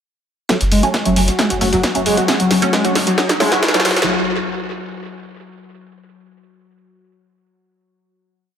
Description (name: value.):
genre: driving peak-time techno.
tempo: 134 BPM.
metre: 4/4.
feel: straight.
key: F# minor.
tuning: A4 = 439 Hz.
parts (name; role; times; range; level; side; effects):
overdriven synth lead; riff; 0.5-3.9 s; F#3 to F#4; -19 LUFS; left 1 dB; distortion, analog chorus, sidechain pumping, dub echo.
filtered dub chord stab; stabs; 0.5-3.8 s; F#3 to C#4; -22 LUFS; right 2 dB; phaser, analog chorus, sidechain pumping, tape echo.
analog drone; drone; 0.8-4.1 s; F#3 to F#4; -25 LUFS; left 3 dB; chorus, sidechain pumping.
dusty soul sampler-style drum kit; drums; 0.5-4.1 s; hi-hat, ride cymbal, snare drum; -29 LUFS; right 2 dB; none.
electronic kick drum; drums; 0.5-3.7 s; none; -24 LUFS; equal; high-pass filter on kick.
punchy analog drum machine; drums; 0.5-4.1 s; hi-hat, snare drum; -19 LUFS; equal; tape echo.
riser; sound effects; 2.0-4.1 s; none; -26 LUFS; equal; none.
saturated sub bass; bass; 0.6-4.0 s; F#1; -22 LUFS; equal; overdrive, sidechain pumping, low-pass filter.
room: wet echo chamber reverb, RT60 1.7 s.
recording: echo-heavy mix, high-pass filter.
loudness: -14 LUFS.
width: side -8 dB against mid.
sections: 0.5-4.1 build.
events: build-up 0.5-4.1; drum fill 0.5-4.1; filter sweep on analog synth lead 0.5-4.1; filter sweep 0.5-4.1; riser 2.0-4.1.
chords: 0.5 F#m.